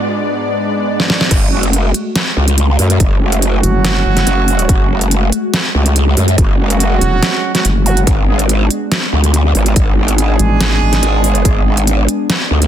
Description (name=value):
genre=heavy wobble dubstep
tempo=142 BPM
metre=4/4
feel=half-time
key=F# minor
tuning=A4 = 440 Hz
part: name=lush unison pad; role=sustained chords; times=0.0-12.7 s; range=G#2 to D5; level=-20 LUFS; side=left 1 dB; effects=chorus, sidechain pumping
part: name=dubstep drum kit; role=drums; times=1.0-12.7 s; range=crash cymbal, hi-hat, snare drum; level=-16 LUFS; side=right 1 dB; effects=soft clipping on snare
part: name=growl bass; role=bass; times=1.3-12.7 s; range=F#1 to F#2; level=-12 LUFS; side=equal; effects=chorus, overdrive
part: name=electronic kick drum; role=drums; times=1.3-11.5 s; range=none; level=-13 LUFS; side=equal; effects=none
part: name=clear brass ensemble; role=stabs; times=1.5-11.7 s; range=F#3 to G#4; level=-20 LUFS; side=right 6 dB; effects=dub echo
part: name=vowel-sweep wobble bass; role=bass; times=3.6-4.3, 7.0-11.0 s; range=E1 to G#1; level=-14 LUFS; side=equal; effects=chorus, overdrive
part: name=zap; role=sound effects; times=7.9-8.0 s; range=none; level=-26 LUFS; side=equal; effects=none
room=little or no reverb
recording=dense, heavily limited modern master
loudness=-11 LUFS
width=side -10 dB against mid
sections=0.0-1.3 A section; 1.3-12.7 B section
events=break 0.0-1.3; build-up 0.0-1.3; drum fill 1.0-1.3; drop 1.3-12.7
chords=0.0 G#dim; 1.3 F#madd9; 8.1 G#dim